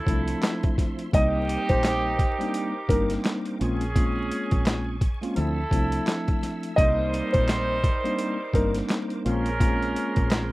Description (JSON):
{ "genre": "hip hop, boom-bap hip-hop", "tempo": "85 BPM", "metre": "4/4", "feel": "swing 60% on 16ths", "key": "unclear", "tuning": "A4 = 442 Hz", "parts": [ { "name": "bright tonewheel organ", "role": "sustained chords", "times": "0.0-10.5 s", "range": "F3 to E6", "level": "-41 LUFS", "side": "equal", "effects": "chorus vibrato, fast rotary speaker, high-pass filter, low-pass filter" }, { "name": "warm trumpet section", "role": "stabs", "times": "0.0-10.5 s", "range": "G3 to C5", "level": "-30 LUFS", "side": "right 2 dB", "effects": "high-pass filter, low-pass filter, tape echo" }, { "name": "tine electric piano", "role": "accompaniment", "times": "0.1-10.5 s", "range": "F3 to F4", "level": "-29 LUFS", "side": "equal", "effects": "medium stereo tremolo, high-pass filter, low-pass filter" }, { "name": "deep dub fingered electric bass", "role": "bass", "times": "0.1-10.5 s", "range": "G1 to D2", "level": "-28 LUFS", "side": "equal", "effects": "none" }, { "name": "boom bap sampler-style drum kit", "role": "drums", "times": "0.1-10.5 s", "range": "handclaps, hi-hat, kick drum, snare drum", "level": "-25 LUFS", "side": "equal", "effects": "none" }, { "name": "dark upright piano", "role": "melody", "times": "1.1-8.7 s", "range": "Bb4 to Eb5", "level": "-27 LUFS", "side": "equal", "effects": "high-pass filter, low-pass filter" } ], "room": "little or no reverb", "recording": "rough home demo mix, vinyl crackle", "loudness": "-22 LUFS", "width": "side -19 dB against mid", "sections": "0.0-10.5 A section", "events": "none", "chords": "0.0 Dm9; 1.1 Cm9; 3.6 Bbm9; 5.4 Dm9; 6.8 Cm9; 9.3 Bbm9", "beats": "0.43 | 1.13 1.84 2.54 3.25 | 3.96 4.66 5.37 6.08 | 6.78 7.49 8.19 8.90 | 9.60 10.31" }